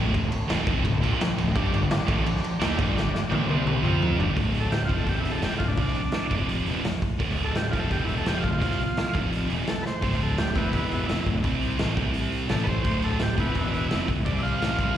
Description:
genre	garage rock duo or trio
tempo	170 BPM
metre	4/4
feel	straight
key	D minor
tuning	A4 = 438 Hz
part	thick fuzz guitar	riff	0.0-15.0 s	D2 to F4	-27 LUFS	right 1 dB	distortion, slapback echo
part	fuzz picked electric bass	bass	0.0-14.9 s	D1 to F2	-29 LUFS	equal	overdrive
part	raw garage drum kit	drums	0.1-14.9 s	hi-hat, kick drum, ride cymbal, snare drum, toms	-27 LUFS	equal	none
part	combo organ	sustained chords	1.6-4.3 s	C4 to D5	-35 LUFS	left 1 dB	none
part	overdriven combo organ	melody	4.6-15.0 s	B3 to F5	-31 LUFS	right 1 dB	slapback echo
room	studio reverb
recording	live gig heard through the venue's PA, recital hall reverb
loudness	-23 LUFS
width	side -10 dB against mid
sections	0.0-4.4 A section; 4.4-15.0 B section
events	drum fill 2.9-4.4, 9.8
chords	0.0 Dm; 1.5 G5; 3.5 C5; 3.8 F5; 4.2 G5; 4.4 Dm; 5.1 E5; 5.4 Dm; 6.3 F5; 6.7 Dm; 7.9 E5; 8.3 Dm; 9.1 F5; 9.5 Dm; 10.7 E5; 11.1 Dm; 11.4 C5; 11.8 A5; 12.0 C5; 12.5 A5; 12.8 Dm; 13.6 E5; 13.9 Dm; 14.3 C5; 14.6 Fmaj7/A

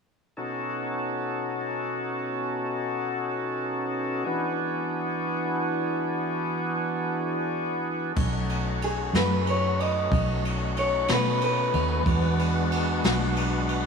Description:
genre	slow blues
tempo	62 BPM (dotted quarters)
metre	12/8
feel	straight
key	B mixolydian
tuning	A4 = 439 Hz
part	overdriven tonewheel organ	sustained chords	0.4-13.9 s	B2 to A4	-28 LUFS	equal	slow rotary speaker
part	vintage muted fingered electric bass	bass	8.2-13.9 s	B1 to B2	-26 LUFS	equal	none
part	jazz brush drum kit	drums	8.2-13.8 s	crash cymbal, kick drum, ride cymbal, snare drum	-29 LUFS	equal	none
part	electric guitar through a small old amp	second line	8.8-12.7 s	G#4 to D#5	-27 LUFS	equal	tape echo, slapback echo
room	wet lush hall reverb, RT60 2.9 s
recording	big arena sound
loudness	-24 LUFS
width	side -5 dB against mid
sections	0.4-8.2 A section; 8.2-13.9 B section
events	clean electric guitar solo 8.2-13.9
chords	0.4 B7; 4.3 E7; 8.2 B7; 12.1 E7

